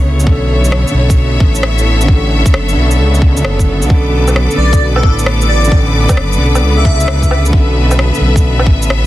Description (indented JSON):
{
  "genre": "future garage",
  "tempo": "132 BPM",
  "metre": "4/4",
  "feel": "swing 65% on 16ths",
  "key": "B minor",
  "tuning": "A4 = 440 Hz",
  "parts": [
    { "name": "felt-muted upright piano", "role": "accompaniment", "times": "0.0-9.1 s", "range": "D3 to A4", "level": "-19 LUFS", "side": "right 1 dB", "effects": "sidechain pumping, analog delay" },
    { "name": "bright studio string section", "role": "sustained chords", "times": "0.0-9.1 s", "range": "B3 to D6", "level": "-18 LUFS", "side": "left 2 dB", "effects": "sidechain pumping" },
    { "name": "swelling detuned saw bass", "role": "bass", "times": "0.0-9.1 s", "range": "F#1 to C#2", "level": "-12 LUFS", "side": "equal", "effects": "sidechain pumping" },
    { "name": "electronic shaker, rim click and woodblock", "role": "drums", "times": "0.2-9.0 s", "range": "none", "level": "-20 LUFS", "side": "equal", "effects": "soft clipping on snare" },
    { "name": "electronic kick drum", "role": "drums", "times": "0.3-8.8 s", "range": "none", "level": "-10 LUFS", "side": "equal", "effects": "none" },
    { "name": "airy dreamy lead", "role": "melody", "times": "4.6-7.4 s", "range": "A4 to E5", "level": "-20 LUFS", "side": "equal", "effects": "chorus, tape echo" }
  ],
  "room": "digital ambience",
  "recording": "dense, heavily limited modern master, vinyl crackle",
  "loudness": "-9 LUFS",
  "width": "side -15 dB against mid",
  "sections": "0.0-9.1 A section",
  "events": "none",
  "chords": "0.0 Bm9"
}